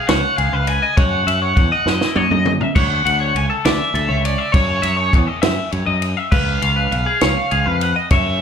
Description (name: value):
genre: math rock and midwest emo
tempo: 67 BPM (dotted quarters)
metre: 6/8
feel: straight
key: unclear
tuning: A4 = 440 Hz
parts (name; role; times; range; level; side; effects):
- overdriven electric guitar; melody; 0.0-8.4 s; C#5 to G#5; -21 LUFS; right 1 dB; slapback echo, digital delay
- twelve-string electric guitar; arpeggios; 0.0-8.4 s; E4 to F#5; -21 LUFS; left 4 dB; wide subtle chorus, slapback echo
- growling fingered electric bass; bass; 0.1-8.4 s; B1 to F#2; -20 LUFS; equal; overdrive
- compact cocktail drum kit; drums; 0.1-8.2 s; crash cymbal, kick drum, ride cymbal, snare drum, splash cymbal, toms; -20 LUFS; equal; none
room: small room ambience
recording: live gig heard through the venue's PA, club reverb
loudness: -15 LUFS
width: side -7 dB against mid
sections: 0.0-8.4 A section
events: drum fill 1.9-2.8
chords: 0.0 C#7; 1.0 F#5; 2.8 Dmaj9; 4.5 F#5; 6.3 C#7